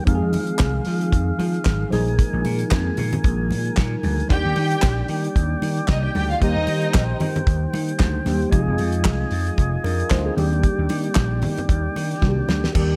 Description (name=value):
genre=disco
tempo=114 BPM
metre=4/4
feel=swing 56% on 16ths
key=Eb major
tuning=A4 = 441 Hz
part: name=tine electric piano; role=accompaniment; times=0.0-13.0 s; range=Eb3 to C5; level=-29 LUFS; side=equal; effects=phaser
part: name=tonewheel organ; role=sustained chords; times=0.0-13.0 s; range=Eb3 to Ab5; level=-31 LUFS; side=equal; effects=slow rotary speaker
part: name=vintage slap bass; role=bass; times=0.1-13.0 s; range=F1 to F3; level=-26 LUFS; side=equal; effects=none
part: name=damped 70s drum kit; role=drums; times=0.1-12.9 s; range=crash cymbal, handclaps, hi-hat, kick drum, snare drum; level=-24 LUFS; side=equal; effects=none
part: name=congas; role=percussion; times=0.3-12.6 s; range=none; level=-32 LUFS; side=equal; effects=none
part: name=dark studio string section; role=second line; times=4.3-7.2, 12.7-13.0 s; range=Bb3 to G5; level=-28 LUFS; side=equal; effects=none
room=small room ambience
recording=none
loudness=-21 LUFS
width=mono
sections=0.0-12.7 A section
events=drum fill 12.2-12.7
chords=0.1 Fm7; 1.9 Bb7sus4; 4.3 Ebmaj7; 8.5 Fm7; 10.4 Ebmaj7